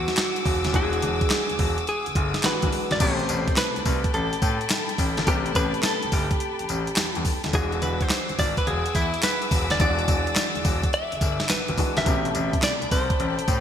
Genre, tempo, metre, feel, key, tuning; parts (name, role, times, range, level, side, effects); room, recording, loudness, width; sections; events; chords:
R&B, new jack swing; 106 BPM; 4/4; swing 67% on 16ths; A dorian; A4 = 440 Hz
direct-recorded clean electric guitar; melody; 0.0-13.6 s; E4 to E5; -27 LUFS; right 1 dB
bright concert grand piano; accompaniment; 0.0-13.6 s; B2 to G4; -32 LUFS; left 3 dB
warm studio string section; sustained chords; 0.0-13.6 s; G#4 to E6; -31 LUFS; left 2 dB
warm concert grand piano; bass; 0.0-13.6 s; D#1 to A2; -28 LUFS; left 1 dB
crisp 8-bit digital drum machine; drums; 0.1-13.6 s; crash cymbal, handclaps, hi-hat, kick drum, snare drum, tambourine; -24 LUFS; equal; gated reverb
moderate lush hall reverb, RT60 1.9 s, digital ambience; bright 1980s-style digital production; -21 LUFS; side -9 dB against mid
0.0-3.0 A section; 3.0-13.6 B section
0.0 E9; 3.0 Am9; 7.5 E9; 12.1 Am9